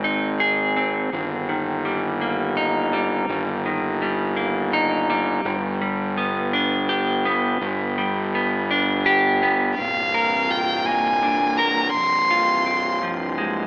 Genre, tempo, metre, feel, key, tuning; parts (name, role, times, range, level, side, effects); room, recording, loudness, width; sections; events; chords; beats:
post-rock; 83 BPM; 3/4; straight; A4 = 438 Hz
clean electric guitar; arpeggios; 0.0-13.7 s; Eb2 to Bb4; -22 LUFS; equal; digital delay
fuzz fingered electric bass; bass; 0.0-13.7 s; C1 to Ab1; -24 LUFS; equal; overdrive
clear violin; melody; 9.8-13.0 s; F5 to C6; -20 LUFS; equal; digital delay
light reverb, studio reverb; AM radio sound; -19 LUFS; side -25 dB against mid
0.0-9.8 A section; 9.8-13.7 B section
0.0 Ab; 1.1 Eb/G; 5.5 G; 9.8 Bb/C; 12.0 Fm/C
0.40 | 1.13 1.85 2.57 | 3.29 4.01 4.74 | 5.46 6.18 6.90 | 7.62 8.35 9.07 | 9.79 10.51 11.23 | 11.95 12.67 13.39